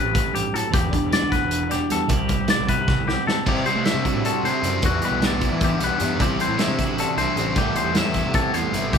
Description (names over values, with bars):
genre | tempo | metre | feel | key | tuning
math rock and midwest emo | 307 BPM (eighths) | 7/8 | straight | C lydian | A4 = 441 Hz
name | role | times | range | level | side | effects
twelve-string electric guitar | accompaniment | 0.0-9.0 s | E2 to B4 | -26 LUFS | right 5 dB | spring reverb
twangy electric guitar | arpeggios | 0.0-9.0 s | F#4 to E5 | -25 LUFS | left 6 dB | none
fuzz picked electric bass | bass | 0.0-9.0 s | E1 to A3 | -28 LUFS | left 1 dB | overdrive
loose indie drum kit | drums | 0.1-9.0 s | crash cymbal, hi-hat, kick drum, snare drum | -24 LUFS | equal | none
overdriven electric guitar | riff | 3.5-9.0 s | C3 to E4 | -25 LUFS | equal | none
room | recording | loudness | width
moderate large studio reverb, RT60 0.8 s | band playing live in one room | -19 LUFS | side -7 dB against mid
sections
0.0-3.5 A section; 3.5-9.0 B section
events
drum fill 2.9-3.5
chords
0.0 Am9; 0.7 Em9; 2.1 Cmaj13; 3.5 C69; 4.8 Em9; 6.2 C69; 7.6 Am9/C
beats
0.15 0.34 0.54 | 0.73 0.93 1.12 1.32 1.51 1.71 1.90 | 2.10 2.29 2.49 2.69 2.88 3.08 3.27 | 3.47 3.66 3.86 4.05 4.25 4.44 4.64 | 4.84 5.03 5.23 5.42 5.62 5.81 6.01 | 6.20 6.40 6.59 6.79 6.99 7.18 7.38 | 7.57 7.77 7.96 8.16 8.35 8.55 8.74 | 8.94